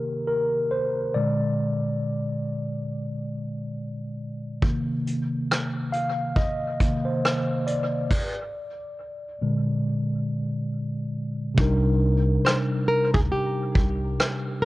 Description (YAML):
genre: lo-fi hip hop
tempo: 69 BPM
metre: 4/4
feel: swing 59% on 16ths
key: C minor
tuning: A4 = 440 Hz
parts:
  - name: mellow tine electric piano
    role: accompaniment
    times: 0.0-14.7 s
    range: Bb2 to F5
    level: -25 LUFS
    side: equal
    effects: medium stereo tremolo, cassette tape, low-pass filter
  - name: vintage brush drum kit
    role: drums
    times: 4.6-14.4 s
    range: crash cymbal, hi-hat, kick drum, rim click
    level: -24 LUFS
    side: equal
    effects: vintage 12-bit sampler grit
  - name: upright bass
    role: bass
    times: 11.6-14.1 s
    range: C2 to D2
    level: -26 LUFS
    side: equal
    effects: none
  - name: flamenco guitar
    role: melody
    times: 12.4-14.7 s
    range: G4 to C5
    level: -26 LUFS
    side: equal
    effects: low-pass filter, analog delay
room: light reverb, small room ambience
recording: echo-heavy mix, cassette tape, nothing above 11.0 kHz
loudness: -23 LUFS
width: side -18 dB against mid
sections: 0.0-11.6 A section; 11.6-14.7 B section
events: tine electric piano solo 0.0-11.6; filter sweep on tine electric piano 0.0-11.6; stop 8.1-11.6; hi-hats muted 11.6-14.7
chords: 0.0 Cm7; 1.1 Bb7; 4.6 Cm7; 8.1 Bb7; 11.6 Cm7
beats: 0.28 | 1.15 2.02 2.88 3.75 | 4.62 5.49 6.36 7.23 | 8.10 8.97 9.84 10.71 | 11.58 12.45 13.32 14.19